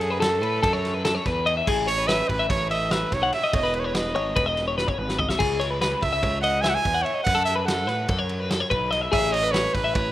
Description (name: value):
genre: math rock and midwest emo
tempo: 290 BPM (eighths)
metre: 9/8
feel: straight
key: unclear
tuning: A4 = 440 Hz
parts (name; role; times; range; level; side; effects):
- warm trumpet; melody; 0.0-10.1 s; G#4 to G#5; -25 LUFS; right 3 dB; slapback echo
- twelve-string electric guitar; arpeggios; 0.0-10.1 s; G#4 to F#5; -25 LUFS; left 2 dB; none
- fuzz picked electric bass; bass; 0.0-10.1 s; E1 to A2; -29 LUFS; equal; overdrive
- loose indie drum kit; drums; 0.0-10.0 s; crash cymbal, kick drum, ride cymbal, snare drum, toms; -28 LUFS; equal; none
room: light reverb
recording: rough home demo mix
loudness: -21 LUFS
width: side -14 dB against mid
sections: 0.0-10.1 A section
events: drum fill 4.8-5.4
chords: 0.0 F#m; 1.7 Amaj7; 3.5 Emaj7; 5.4 C#m7; 7.3 F#m; 9.1 Amaj7